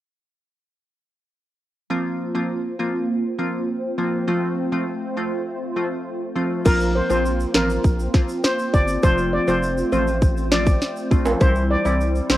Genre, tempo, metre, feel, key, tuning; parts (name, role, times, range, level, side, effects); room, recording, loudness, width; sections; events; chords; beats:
dancehall; 101 BPM; 4/4; straight; A4 = 440 Hz
glassy wavetable pluck; accompaniment; 1.9-12.4 s; E3 to F4; -25 LUFS; equal; chorus, sidechain pumping, cassette tape
hollow soft pad; sustained chords; 2.2-12.4 s; G3 to C5; -26 LUFS; equal; ensemble chorus, sidechain pumping, cassette tape
steel pan; melody; 6.7-12.4 s; Bb4 to D5; -23 LUFS; equal; cassette tape
round analog bass; bass; 6.7-12.4 s; F1 to C2; -24 LUFS; equal
island pop drum kit; drums; 6.7-12.4 s; crash cymbal, kick drum, snare drum; -18 LUFS; equal; overdrive
tube shaker and timbales; percussion; 6.7-12.4 s; -30 LUFS; right 2 dB
digital ambience; home recording on cassette; -19 LUFS; side -14 dB against mid
1.9-6.7 A section; 6.7-12.4 B section
hi-hats muted 6.7-12.4
1.9 Bbsus2; 4.3 F; 6.7 Bbsus2; 9.0 F; 11.4 C
| 1.90 2.50 3.09 3.69 | 4.28 4.87 5.47 6.06 | 6.66 7.25 7.84 8.44 | 9.03 9.63 10.22 10.81 | 11.41 12.00